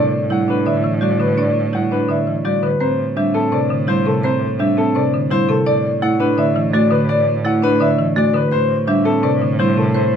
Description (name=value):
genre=classical, minimalist pattern music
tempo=168 BPM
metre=4/4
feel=straight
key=A dorian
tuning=A4 = 441 Hz
part: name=clear concert grand piano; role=melody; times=0.0-10.2 s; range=A4 to F#5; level=-20 LUFS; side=left 6 dB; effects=none
part: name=folk marimba with hard mallets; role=accompaniment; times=0.0-10.0 s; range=C3 to D4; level=-20 LUFS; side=right 1 dB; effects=none
part: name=marimba with medium hard mallets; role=arpeggios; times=0.0-10.2 s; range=C4 to D5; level=-19 LUFS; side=right 3 dB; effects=none
part: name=rich cello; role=bass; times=0.0-10.2 s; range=A2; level=-23 LUFS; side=right 3 dB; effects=none
room=light reverb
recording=dark, warm production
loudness=-14 LUFS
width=side -8 dB against mid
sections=0.0-10.2 A section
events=none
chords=0.0 Em7/A; 2.8 Am7; 5.7 Bm7/A; 8.5 D7sus4/A